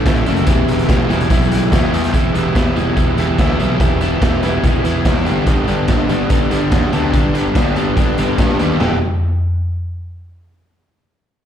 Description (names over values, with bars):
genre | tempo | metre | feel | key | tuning
indie rock | 144 BPM | 4/4 | straight | E minor | A4 = 442 Hz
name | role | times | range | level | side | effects
overdriven electric guitar | riff | 0.0-9.0 s | G2 to G4 | -17 LUFS | equal | slapback echo
fuzz picked electric bass | bass | 0.0-9.0 s | E1 to G2 | -19 LUFS | equal | overdrive
raw garage drum kit | drums | 0.1-8.9 s | hi-hat, kick drum, snare drum, toms | -17 LUFS | equal | none
room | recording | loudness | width
studio reverb | live gig heard through the venue's PA, recital hall reverb | -13 LUFS | side -9 dB against mid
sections
0.0-2.1 A section; 2.1-8.8 B section; 8.8-10.5 C section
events
none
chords
0.5 Em; 5.3 G; 8.8 Em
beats
0.06 | 0.47 0.89 1.30 1.72 | 2.13 2.55 2.97 3.38 | 3.80 4.22 4.64 5.05 | 5.47 5.89 6.30 6.72 | 7.14 7.55 7.97 8.38 | 8.80